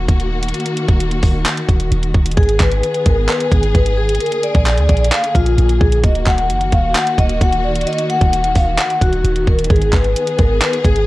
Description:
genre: hip hop, trap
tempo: 131 BPM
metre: 4/4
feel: half-time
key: Eb harmonic minor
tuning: A4 = 439 Hz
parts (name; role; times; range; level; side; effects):
- warm symphonic string section; sustained chords; 0.0-11.1 s; D3 to Ab4; -22 LUFS; left 2 dB; none
- clean 808-style bass; bass; 0.0-11.1 s; Eb1 to D2; -16 LUFS; equal; none
- garage drum kit; drums; 0.1-11.1 s; handclaps, hi-hat, kick drum; -16 LUFS; equal; overdrive
- vibraphone with medium mallets; melody; 2.4-11.1 s; F4 to Gb5; -18 LUFS; left 1 dB; analog delay
room: small room ambience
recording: dry, gritty hardware recording, cassette tape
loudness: -13 LUFS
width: side -18 dB against mid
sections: 0.0-11.1 A section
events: break 0.0-2.4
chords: 0.0 Ebm; 2.4 Abm; 4.2 Bb7; 6.0 Ebm; 9.7 Abm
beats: 0.08 | 0.54 1.00 1.46 1.92 | 2.37 2.83 3.29 3.75 | 4.21 4.66 5.12 5.58 | 6.04 6.50 6.95 7.41 | 7.87 8.33 8.79 9.24 | 9.70 10.16 10.62

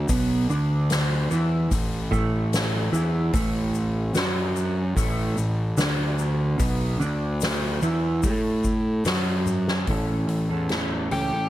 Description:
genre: psychedelic rock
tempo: 74 BPM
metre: 4/4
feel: straight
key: A major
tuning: A4 = 440 Hz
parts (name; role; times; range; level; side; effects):
- mellow electric guitar; riff; 0.0-11.5 s; A2 to A4; -25 LUFS; right 1 dB; rotary speaker
- fuzz picked electric bass; bass; 0.0-11.3 s; A1 to A2; -27 LUFS; equal; overdrive
- soft-mallet drum kit; drums; 0.1-11.3 s; hi-hat, kick drum, snare drum, toms; -28 LUFS; left 1 dB; none
- tube shaker; percussion; 0.1-9.7 s; none; -38 LUFS; left 14 dB; none
- octave-fuzz lead guitar; melody; 11.1-11.5 s; G4; -25 LUFS; left 1 dB; distortion
room: small room ambience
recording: none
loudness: -21 LUFS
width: side -14 dB against mid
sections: 0.0-9.9 A section; 9.9-11.5 B section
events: drum fill 9.5-9.9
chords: 0.0 A5; 9.9 A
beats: | 0.09 0.90 1.72 2.53 | 3.34 4.16 4.97 5.79 | 6.60 7.42 8.24 9.06 | 9.88 10.70

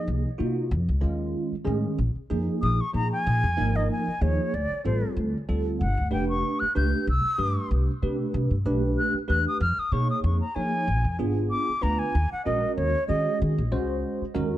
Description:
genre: electric jazz fusion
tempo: 95 BPM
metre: 4/4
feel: swing 54% on 16ths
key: unclear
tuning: A4 = 436 Hz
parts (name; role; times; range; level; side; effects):
- concert flute; melody; 0.0-13.4 s; C5 to G6; -28 LUFS; left 1 dB; none
- bell-like tine electric piano; accompaniment; 0.0-14.6 s; Eb3 to Db5; -29 LUFS; right 2 dB; phaser
- upright bass; bass; 0.1-14.5 s; F1 to F3; -26 LUFS; equal; none
room: light reverb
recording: dark, warm production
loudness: -23 LUFS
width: side -13 dB against mid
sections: 0.0-14.6 A section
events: flute solo 0.0-14.6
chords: 0.0 Cm7b5; 0.7 F7alt; 2.0 Bb5; 4.5 Dm7; 5.8 G9; 7.1 Cmaj9; 9.6 Fm7b5; 10.9 Bb7b9; 12.1 Ebm7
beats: 0.08 0.72 1.35 | 1.99 2.62 3.26 3.89 | 4.53 5.16 5.80 6.43 | 7.07 7.70 8.34 8.97 | 9.60 10.24 10.87 11.51 | 12.14 12.78 13.41 14.04

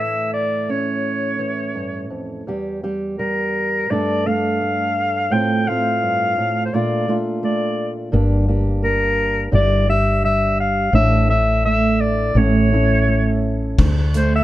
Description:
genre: acoustic folk-pop ballad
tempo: 85 BPM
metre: 4/4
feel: straight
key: unclear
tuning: A4 = 440 Hz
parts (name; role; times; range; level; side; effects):
- clear clarinet; melody; 0.0-14.4 s; Bb4 to G5; -20 LUFS; left 1 dB; none
- fingerpicked old ladder-braced acoustic guitar; accompaniment; 0.0-14.4 s; D2 to A4; -21 LUFS; right 2 dB; none
- woody fretless electric bass; bass; 8.1-14.4 s; G1 to D2; -18 LUFS; left 1 dB; none
- loose indie drum kit; drums; 13.8-14.3 s; crash cymbal, hi-hat, kick drum; -20 LUFS; left 1 dB; none
room: little or no reverb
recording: dark, warm production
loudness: -16 LUFS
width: side -15 dB against mid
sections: 0.0-2.5 A section; 2.5-13.8 B section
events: none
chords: 0.0 A; 2.5 Edim; 3.9 Gsus2; 5.3 G9sus4; 6.7 Bbmaj7; 8.1 Gm; 9.5 Em7/G; 10.9 Asus4; 12.3 A; 13.8 D7(no3)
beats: 0.33 1.04 1.75 | 2.47 3.19 3.90 4.61 | 5.31 6.02 6.73 7.43 | 8.13 8.83 9.53 10.23 | 10.93 11.64 12.35 13.07 | 13.78

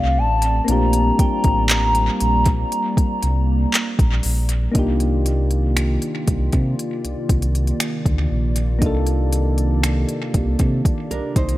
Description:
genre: contemporary R&B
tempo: 59 BPM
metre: 4/4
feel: straight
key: unclear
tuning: A4 = 441 Hz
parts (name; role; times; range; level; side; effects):
- gliding portamento lead; melody; 0.0-3.7 s; F5 to Bb5; -22 LUFS; equal; chorus, tape echo
- soft electric-piano-like synth keys; accompaniment; 0.0-11.6 s; A3 to A4; -26 LUFS; left 2 dB; chorus
- hollow soft pad; sustained chords; 0.0-11.6 s; C3 to D5; -27 LUFS; right 1 dB; chorus
- sub bass with octave; bass; 0.0-11.6 s; A1 to C3; -19 LUFS; equal; none
- smooth R&B drum kit; drums; 0.4-11.6 s; finger snaps, handclaps, hi-hat, kick drum; -20 LUFS; equal; overdrive, tape echo
- soft synth bell; texture; 1.2-2.4 s; G5; -39 LUFS; left 1 dB; none
- nylon-string guitar; arpeggios; 11.1-11.6 s; D4 to C5; -25 LUFS; right 4 dB; none
room: light reverb, digital ambience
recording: echo-heavy mix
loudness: -17 LUFS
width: side -16 dB against mid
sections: 0.0-4.8 A section; 4.8-11.6 B section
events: none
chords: 0.0 Bbmaj13; 4.8 Cm11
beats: | 0.68 1.70 2.72 3.73 | 4.75 5.77 6.78 7.80 | 8.82 9.84 10.85

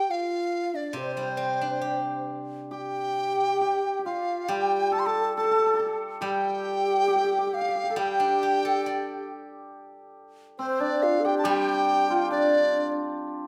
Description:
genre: chinese traditional, Chinese chamber ensemble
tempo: 69 BPM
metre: 2/4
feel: rubato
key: G shang mode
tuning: A4 = 440 Hz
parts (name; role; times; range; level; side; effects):
- large dizi; melody; 0.0-12.9 s; C5 to C6; -30 LUFS; equal; none
- breathy low xiao; second line; 0.0-13.0 s; D4 to D5; -32 LUFS; equal; none
- steel-string zither; accompaniment; 0.9-13.5 s; C3 to D5; -35 LUFS; equal; none
- hammered dulcimer; second line; 2.7-13.5 s; C4 to A4; -31 LUFS; equal; none
room: moderate recital hall reverb, RT60 1.4 s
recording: none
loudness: -26 LUFS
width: mono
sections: 0.0-9.7 A section; 9.7-13.5 B section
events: none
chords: none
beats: 0.08 | 0.95 1.83 | 2.72 3.62 | 4.50 5.37 | 6.24 7.10 | 7.97 8.85 | 9.73 10.60 | 11.46 12.31 | 13.15

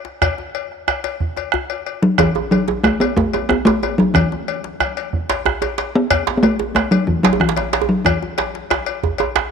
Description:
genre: west african traditional, West African drum ensemble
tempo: 122 BPM (dotted quarters)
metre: 12/8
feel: straight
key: unclear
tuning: A4 = 440 Hz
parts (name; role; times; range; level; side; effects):
- djembe; percussion; 0.0-9.5 s; none; -28 LUFS; left 6 dB; none
- bombo; percussion; 0.2-9.5 s; none; -21 LUFS; right 6 dB; none
- cowbell; percussion; 0.2-9.3 s; none; -24 LUFS; left 14 dB; none
- talking drum; melody; 2.0-8.7 s; E3 to B3; -17 LUFS; left 1 dB; none
- djembe; percussion; 2.2-9.5 s; none; -21 LUFS; right 8 dB; none
room: moderate plate reverb, RT60 2.9 s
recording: 1960s-style stereo with parts hard left and right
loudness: -16 LUFS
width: side -6 dB against mid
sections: 0.0-2.2 A section; 2.2-9.5 B section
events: drum fill 9.2-9.5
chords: none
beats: | 0.21 0.71 1.20 1.69 | 2.19 2.68 3.17 3.66 | 4.15 4.64 5.13 5.62 | 6.11 6.60 7.08 7.57 | 8.06 8.54 9.03

